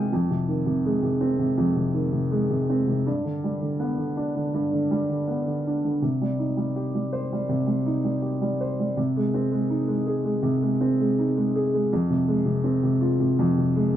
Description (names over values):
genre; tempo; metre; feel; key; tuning
folk; 81 BPM; 4/4; straight; unclear; A4 = 439 Hz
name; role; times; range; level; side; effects
dark upright piano; solo; 0.0-14.0 s; F2 to Ab5; -22 LUFS; equal; none
room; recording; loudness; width
moderate studio reverb, RT60 0.8 s; band playing live in one room; -22 LUFS; side -11 dB against mid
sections
0.0-14.0 A section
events
none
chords
0.1 Fm7; 3.1 G; 6.0 Cm; 9.0 Ab/C; 11.9 Fm